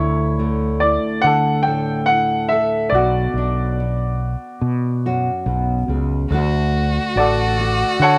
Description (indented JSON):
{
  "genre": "acoustic folk-pop ballad",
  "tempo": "71 BPM",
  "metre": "4/4",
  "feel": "straight",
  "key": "D major",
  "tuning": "A4 = 440 Hz",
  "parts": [
    { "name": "clear grand piano", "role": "melody", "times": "0.0-8.2 s", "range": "E4 to G5", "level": "-21 LUFS", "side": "equal", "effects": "none" },
    { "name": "nylon-string guitar", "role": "accompaniment", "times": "0.0-8.2 s", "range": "D2 to A4", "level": "-26 LUFS", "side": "equal", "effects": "none" },
    { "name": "fretless electric bass", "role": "bass", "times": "0.0-8.2 s", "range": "A1 to D3", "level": "-23 LUFS", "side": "equal", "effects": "none" },
    { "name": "clear violin", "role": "second line", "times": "6.3-8.2 s", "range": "F#4", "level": "-24 LUFS", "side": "equal", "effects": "none" },
    { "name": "vibraphone with medium hard mallets", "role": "arpeggios", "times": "6.3-8.2 s", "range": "F#4", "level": "-33 LUFS", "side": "equal", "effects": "none" }
  ],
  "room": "light reverb",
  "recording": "none",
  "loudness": "-19 LUFS",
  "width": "mono",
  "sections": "0.0-6.3 A section; 6.3-8.2 B section",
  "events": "none",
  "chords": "0.0 Dsus2; 2.9 Bmadd9; 6.3 D"
}